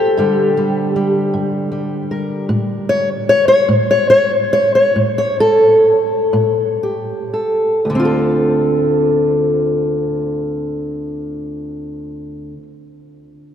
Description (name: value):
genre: acoustic country blues, solo or duo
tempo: 37-53 BPM (dotted quarters)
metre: 12/8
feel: straight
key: D minor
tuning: A4 = 442 Hz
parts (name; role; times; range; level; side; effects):
- fingerpicked steel-string acoustic guitar; solo; 0.0-12.7 s; D2 to C#5; -13 LUFS; equal; none
room: wet cathedral reverb, RT60 5.8 s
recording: in a vast, echoing space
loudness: -13 LUFS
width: side -9 dB against mid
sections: 0.0-7.8 A section; 7.8-13.5 B section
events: steel-string acoustic guitar solo 0.0-7.8; slowing down 0.9-7.8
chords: 0.2 Gm; 2.5 A7; 7.8 Dm7